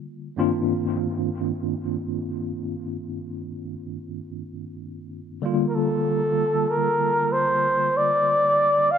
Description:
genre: sunset chillout.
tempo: free time.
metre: none.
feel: none.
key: unclear.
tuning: A4 = 440 Hz.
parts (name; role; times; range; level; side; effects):
barky tine electric piano; accompaniment; 0.0-9.0 s; G2 to F4; -26 LUFS; moving between left 4 dB and right 6 dB; medium stereo tremolo, auto-pan, low-pass filter, dub echo.
breathy flugelhorn; melody; 5.7-9.0 s; A4 to F5; -19 LUFS; equal; dub echo.
room: wet spring reverb, RT60 2.9 s.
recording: echo-heavy mix.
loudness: -21 LUFS.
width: side -8 dB against mid.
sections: 0.0-9.0 A section.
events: filter sweep on tine electric piano 0.0-9.0.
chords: 0.4 Cm11/G; 5.4 Gm7.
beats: free time.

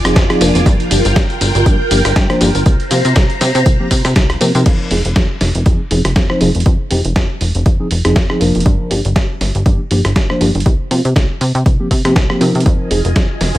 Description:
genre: filtered disco house.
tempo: 120 BPM.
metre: 4/4.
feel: swing 56% on 16ths.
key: F dorian.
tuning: A4 = 440 Hz.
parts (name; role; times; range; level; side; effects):
mellow reed electric piano; accompaniment; 0.0-13.0 s; F3 to C5; -17 LUFS; equal; phaser, sidechain pumping, low-pass filter.
phased string machine; sustained chords; 0.0-4.6, 12.7-13.6 s; F4 to Bb5; -19 LUFS; right 1 dB; ensemble chorus, phaser, sidechain pumping, low-pass filter.
plucky analog bass; bass; 0.0-13.6 s; F1 to C3; -16 LUFS; equal; tube saturation, sidechain pumping, low-pass filter.
dusty soul sampler-style drum kit; drums; 0.1-13.6 s; crash cymbal, hi-hat, ride cymbal, rim click, snare drum, tambourine; -19 LUFS; equal; small room reverb, sidechain pumping on hats, sidechain pumping on perc, sidechain pumping on cymbals.
electronic kick drum; drums; 0.2-13.3 s; none; -13 LUFS; equal; overdrive, small room reverb.
room: digital ambience.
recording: none.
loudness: -11 LUFS.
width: side -15 dB against mid.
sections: 0.0-4.7 A section; 4.7-13.6 B section.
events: drop 0.0-4.7; filter sweep 4.7-13.6.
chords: 0.0 Fm7; 0.7 Gm7; 2.7 C7sus4; 4.7 Fm7; 8.7 Gm7; 10.7 C7sus4; 12.7 Fm7.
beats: 0.16 | 0.66 1.16 1.66 2.16 | 2.66 3.16 3.66 4.16 | 4.66 5.16 5.66 6.16 | 6.66 7.16 7.66 8.16 | 8.66 9.16 9.66 10.16 | 10.66 11.16 11.66 12.16 | 12.66 13.16.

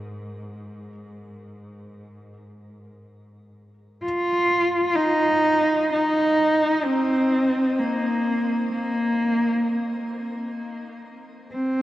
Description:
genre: ambient.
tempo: free time.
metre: none.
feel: none.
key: Ab major.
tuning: A4 = 440 Hz.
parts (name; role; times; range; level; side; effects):
rich studio cello section; bass; 0.0-4.0 s; Ab2; -41 LUFS; equal; tube saturation.
dark cello; melody; 4.0-11.8 s; Bb3 to F4; -20 LUFS; equal; shimmer reverb, tape echo.
room: wet cathedral reverb, RT60 5.7 s.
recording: worn, warbling old tape, cassette tape, warbly pitch drift.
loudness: -20 LUFS.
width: side -14 dB against mid.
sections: 0.0-4.0 A section; 4.0-11.8 B section.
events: fade-out on cello section 0.0-4.0.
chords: 0.0 Absus2; 4.0 N.C..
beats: free time.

